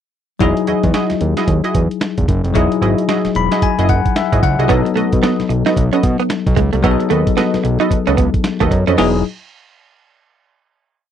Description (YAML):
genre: R&B, new jack swing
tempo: 112 BPM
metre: 4/4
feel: swing 61% on 16ths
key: E major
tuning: A4 = 442 Hz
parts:
  - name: bell-like tine electric piano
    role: accompaniment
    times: 0.4-9.2 s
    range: F#3 to B5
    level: -18 LUFS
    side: left 9 dB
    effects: fast stereo tremolo
  - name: funky polysynth comp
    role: stabs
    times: 0.4-9.2 s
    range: E4 to D#5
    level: -21 LUFS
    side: right 4 dB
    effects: chorus, slapback echo
  - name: fat analog bass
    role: bass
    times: 0.4-9.2 s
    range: E1 to B2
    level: -17 LUFS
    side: right 1 dB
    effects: none
  - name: dusty soul sampler-style drum kit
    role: drums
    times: 0.4-9.1 s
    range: crash cymbal, hi-hat, kick drum, snare drum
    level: -19 LUFS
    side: right 1 dB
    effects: none
  - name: direct-recorded clean electric guitar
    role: riff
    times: 4.7-9.1 s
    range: G#3 to D#4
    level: -18 LUFS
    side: right 10 dB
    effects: lush chorus
room: light reverb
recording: dry, close 1970s-style studio recording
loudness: -13 LUFS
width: side -9 dB against mid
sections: 0.4-9.0 verse; 9.0-11.1 final chord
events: tine electric piano fill 3.1-4.7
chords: 0.4 Emaj9; 4.7 B7; 9.0 Emaj9